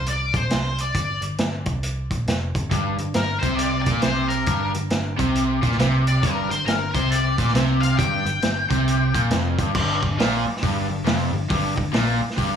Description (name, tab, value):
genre	blues rock power trio and southern rock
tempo	136 BPM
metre	4/4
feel	swing 63% on 8ths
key	G minor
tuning	A4 = 440 Hz
part	octave-fuzz lead guitar	melody	0.0-9.3 s	Bb4 to G5	-26 LUFS	left 3 dB	wah, distortion, analog delay
part	vintage muted picked electric bass	bass	0.0-12.6 s	F1 to C2	-26 LUFS	equal	none
part	vintage drum kit	drums	0.1-12.5 s	crash cymbal, hi-hat, kick drum, snare drum	-25 LUFS	right 1 dB	none
part	overdriven semi-hollow guitar	riff	2.7-12.6 s	F2 to C3	-22 LUFS	equal	none
room	light reverb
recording	studio reverb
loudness	-19 LUFS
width	side -8 dB against mid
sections	0.0-9.7 A section; 9.7-12.6 B section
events	none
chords	0.0 Gm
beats	0.06 0.50 | 0.94 1.39 1.82 2.27 | 2.71 3.15 3.59 4.03 | 4.47 4.91 5.35 5.79 | 6.22 6.67 7.11 7.54 | 7.98 8.42 8.86 9.30 | 9.74 10.18 10.62 11.05 | 11.49 11.93 12.37